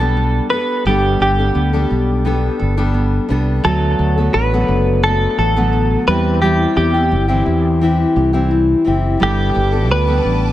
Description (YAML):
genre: pop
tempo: 86 BPM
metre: 4/4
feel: straight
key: G major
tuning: A4 = 438 Hz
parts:
  - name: direct-recorded clean electric guitar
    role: melody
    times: 0.0-10.5 s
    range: G4 to B4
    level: -18 LUFS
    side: equal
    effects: analog chorus, tape echo
  - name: fingerpicked steel-string acoustic guitar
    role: accompaniment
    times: 0.0-10.5 s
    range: D3 to A4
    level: -18 LUFS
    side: left 3 dB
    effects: none
  - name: nylon-string guitar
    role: arpeggios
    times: 0.0-10.5 s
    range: F#3 to A4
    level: -25 LUFS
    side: right 4 dB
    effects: none
  - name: fretless electric bass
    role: bass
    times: 0.0-10.5 s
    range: F#1 to E2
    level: -16 LUFS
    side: equal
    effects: lush chorus
  - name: warm studio string section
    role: sustained chords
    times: 9.2-10.5 s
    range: B4 to D6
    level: -28 LUFS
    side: right 2 dB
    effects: none
room: light reverb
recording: none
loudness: -13 LUFS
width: side -14 dB against mid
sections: 0.0-10.5 A section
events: none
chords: 0.0 Gadd9; 3.6 D6; 6.1 C; 9.2 Gadd9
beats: 0.17 | 0.86 1.56 2.25 2.95 | 3.64 4.34 5.03 5.73 | 6.42 7.12 7.82 8.51 | 9.21 9.90